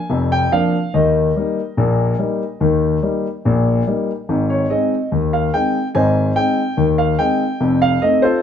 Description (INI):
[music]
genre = ragtime piano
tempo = 72 BPM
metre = 2/4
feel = straight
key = Eb major, Ab major from 4.3 s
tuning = A4 = 440 Hz
[part]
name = clear concert grand piano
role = solo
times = 0.0-8.4 s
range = F1 to Ab5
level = -15 LUFS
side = left 1 dB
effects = none
[sound]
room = moderate echo chamber reverb, RT60 1.3 s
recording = none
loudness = -15 LUFS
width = side -8 dB against mid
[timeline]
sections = 0.0-4.3 A section; 4.3-8.4 B section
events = none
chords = 0.0 Bb; 0.9 Eb; 4.3 Ab; 7.6 F7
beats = 0.09 | 0.92 1.76 | 2.60 3.44 | 4.28 5.11 | 5.94 6.77 | 7.60